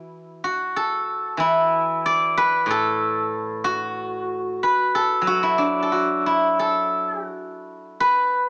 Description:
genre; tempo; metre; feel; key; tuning
chinese traditional; 82-97 BPM; 4/4; rubato; A zhi mode; A4 = 439 Hz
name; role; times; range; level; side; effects
steel-string zither; solo; 0.0-8.5 s; A2 to D5; -22 LUFS; equal; cassette tape
room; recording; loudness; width
light reverb, studio ambience; home recording on cassette, small speaker sound; -22 LUFS; mono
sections
0.0-8.0 A section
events
none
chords
none

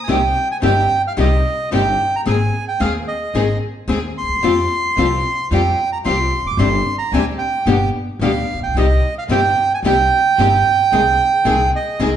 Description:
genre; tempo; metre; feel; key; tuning
tango; 111 BPM; 4/4; rubato; C minor; A4 = 439 Hz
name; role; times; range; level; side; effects
bandoneon; melody; 0.0-12.2 s; Eb5 to D6; -17 LUFS; right 4 dB; none
nylon-string guitar; accompaniment; 0.1-12.1 s; B2 to Ab4; -21 LUFS; left 4 dB; none
dark studio string section; stabs; 0.1-12.2 s; Bb3 to Ab4; -26 LUFS; left 1 dB; none
upright bass; bass; 0.1-12.2 s; E1 to F2; -20 LUFS; equal; none
room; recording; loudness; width
wet stone room reverb, RT60 1.2 s; band playing live in one room, nothing above 10.5 kHz; -14 LUFS; side -9 dB against mid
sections
0.1-12.2 A section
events
none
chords
0.1 Cm; 2.3 Abadd9; 4.4 Fsus2; 6.6 Gsus4; 7.7 G; 8.8 Cm; 10.9 Ab/C

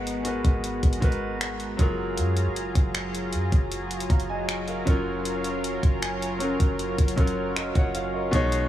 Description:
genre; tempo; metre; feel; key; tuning
contemporary R&B; 78 BPM; 4/4; straight; F# major; A4 = 437 Hz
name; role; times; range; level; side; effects
clear grand piano; accompaniment; 0.0-8.7 s; B2 to A#5; -29 LUFS; equal; none
lush unison pad; sustained chords; 0.0-8.7 s; F#3 to A#5; -31 LUFS; equal; chorus, sidechain pumping
clean 808-style bass; bass; 0.0-8.7 s; F#1 to F#2; -31 LUFS; equal; none
clean 12-bit digital drum machine; drums; 0.1-8.7 s; finger snaps, hi-hat, kick drum; -24 LUFS; equal; none
glassy wavetable pluck; texture; 6.0-8.2 s; G#5; -38 LUFS; left 1 dB; chorus, digital delay
room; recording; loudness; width
light reverb, digital ambience; small room ambience; -23 LUFS; side -12 dB against mid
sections
0.0-8.7 A section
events
none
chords
0.0 G#m9; 1.8 F#maj9; 4.9 F#maj13

